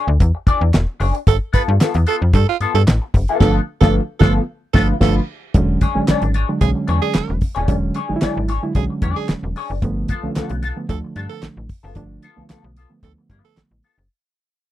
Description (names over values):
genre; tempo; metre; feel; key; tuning
funk; 112 BPM; 4/4; straight; unclear; A4 = 440 Hz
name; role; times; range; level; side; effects
semi-hollow electric guitar; accompaniment; 0.0-14.0 s; B3 to D5; -23 LUFS; left 6 dB; wah
slap-like FM bass; bass; 0.1-14.1 s; D#1 to G2; -19 LUFS; equal; tube saturation
damped 70s drum kit; drums; 0.2-14.0 s; crash cymbal, handclaps, hi-hat, kick drum, snare drum; -16 LUFS; equal; none
raspy tenor saxophone; second line; 1.3-13.6 s; F4 to B4; -22 LUFS; right 13 dB; none
reed electric piano; stabs; 3.4-13.8 s; D3 to E4; -22 LUFS; right 3 dB; none
room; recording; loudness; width
little or no reverb; dry, close 1970s-style studio recording; -15 LUFS; side -13 dB against mid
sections
0.0-5.5 A section; 5.5-14.1 B section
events
break 0.0-3.4; band accent 3.4-5.5; fade-out 5.5-14.1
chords
0.0 E13; 1.3 G9; 5.5 E13; 9.8 G9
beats
0.20 0.74 | 1.27 1.81 2.34 2.87 | 3.41 3.94 4.48 5.01 | 5.54 6.08 6.61 7.15 | 7.68 8.22 8.75 9.29 | 9.82 10.36 10.89 11.42 | 11.96 12.49 13.03 13.56